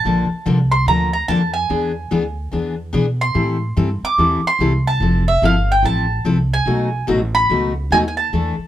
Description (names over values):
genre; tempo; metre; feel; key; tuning
acoustic string swing (jazz manouche); 145 BPM; 4/4; swing 62% on 8ths; unclear; A4 = 441 Hz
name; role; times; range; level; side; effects
mandolin; melody; 0.0-8.7 s; E5 to D6; -19 LUFS; right 2 dB; none
upright bass; bass; 0.0-8.6 s; F1 to B2; -20 LUFS; right 1 dB; none
picked steel-string acoustic guitar; accompaniment; 0.1-8.5 s; B2 to A4; -19 LUFS; left 3 dB; none
room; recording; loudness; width
light reverb; none; -15 LUFS; side -12 dB against mid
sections
0.0-8.7 A section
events
none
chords
0.0 Bbmaj7; 1.7 E7; 3.4 Am7; 5.0 Fmaj7; 6.7 B7